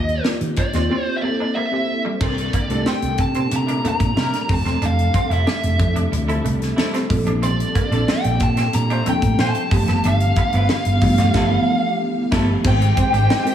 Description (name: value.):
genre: polished 1980s jazz-funk pop.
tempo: 92 BPM.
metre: 4/4.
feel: straight.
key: unclear.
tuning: A4 = 440 Hz.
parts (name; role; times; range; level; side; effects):
fuzz lead guitar; melody; 0.0-13.5 s; D5 to Bb5; -23 LUFS; equal; distortion, diffuse ambient delay.
bell-like FM electric piano; accompaniment; 0.0-13.5 s; E3 to Eb5; -24 LUFS; left 1 dB; ensemble chorus.
semi-hollow electric guitar; riff; 0.0-13.5 s; G3 to E4; -30 LUFS; right 3 dB; ensemble chorus.
mellow fretless electric bass; bass; 0.0-13.3 s; E1 to Eb3; -20 LUFS; right 1 dB; none.
tight funk drum kit; drums; 0.1-13.5 s; crash cymbal, hi-hat, kick drum, snare drum; -22 LUFS; equal; none.
warm studio string section; sustained chords; 2.2-13.5 s; Bb2 to F5; -29 LUFS; right 2 dB; none.
congas; percussion; 2.2-13.5 s; none; -33 LUFS; right 3 dB; none.
clear horn section; second line; 2.7-13.5 s; E3 to C5; -31 LUFS; left 1 dB; none.
room: moderate plate reverb, RT60 1.9 s, studio reverb.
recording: dreamy mix soaked in reverb, small room ambience.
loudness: -16 LUFS.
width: side -10 dB against mid.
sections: 0.0-2.2 A section; 2.2-12.6 B section.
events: band accent 11.3-12.6.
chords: 0.0 Ebmaj9; 0.9 C7; 2.2 C13; 4.5 Fmaj7; 7.1 Bbmaj9; 9.7 G13; 12.6 Abmaj7.